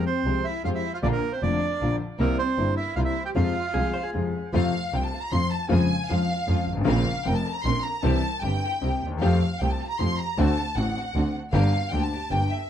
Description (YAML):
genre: tango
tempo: 154 BPM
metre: 3/4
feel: rubato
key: F harmonic minor, F major from 4.5 s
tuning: A4 = 441 Hz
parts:
  - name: bandoneon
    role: melody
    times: 0.0-4.1 s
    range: Bb4 to G5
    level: -29 LUFS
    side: right 7 dB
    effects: tape echo
  - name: rich studio violin section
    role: second line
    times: 0.0-12.7 s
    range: Bb3 to C6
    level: -30 LUFS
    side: left 1 dB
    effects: none
  - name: clear grand piano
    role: accompaniment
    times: 0.0-12.5 s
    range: F1 to G4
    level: -27 LUFS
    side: left 4 dB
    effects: none
  - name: dark studio string section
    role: stabs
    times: 0.2-12.5 s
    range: Ab3 to Bb4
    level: -34 LUFS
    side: right 1 dB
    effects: tape echo
  - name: clear double bass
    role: bass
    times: 0.2-12.5 s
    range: F1 to F2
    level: -26 LUFS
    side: right 2 dB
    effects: none
  - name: vintage hollow-body jazz guitar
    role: second line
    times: 3.7-4.5 s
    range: Ab4 to C5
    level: -32 LUFS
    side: left 4 dB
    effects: none
room: light reverb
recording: dark, warm production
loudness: -22 LUFS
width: side -10 dB against mid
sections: 0.0-4.5 A section; 4.5-12.7 B section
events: violin section solo 4.5-12.7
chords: 0.0 Fmadd9; 1.0 Bb; 2.2 C7; 3.4 Fm; 4.5 F; 5.7 Db/F; 6.9 Bbmadd9; 8.0 C; 9.2 Fadd9; 10.4 D7; 11.5 Gm